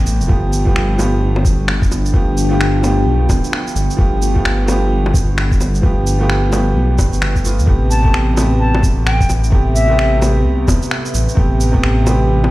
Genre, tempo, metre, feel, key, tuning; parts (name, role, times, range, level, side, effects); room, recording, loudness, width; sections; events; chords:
future garage; 130 BPM; 4/4; swing 62% on 16ths; A4 = 441 Hz
clear upright piano; accompaniment; 0.0-12.5 s; C3 to G4; -20 LUFS; right 2 dB; sidechain pumping, analog delay
deep dark ambient pad; sustained chords; 1.3-12.5 s; A3 to F5; -25 LUFS; left 2 dB; chorus, built-in reverb, vintage 12-bit sampler grit, sidechain pumping
dark detuned saw bass; bass; 0.0-12.5 s; D1 to D2; -15 LUFS; equal; tube saturation, sidechain pumping
electronic shaker, finger snaps and bongos; drums; 0.1-12.5 s; -22 LUFS; left 1 dB
electronic kick drum; drums; 0.3-11.8 s; -15 LUFS; equal
reedy concert flute; melody; 7.9-10.2 s; E5 to A5; -20 LUFS; left 1 dB; analog delay
light reverb, digital ambience; played on a big sound system in a bare room, stone room reverb; -12 LUFS; side -18 dB against mid
0.0-12.5 A section
0.3 G9; 7.7 Am9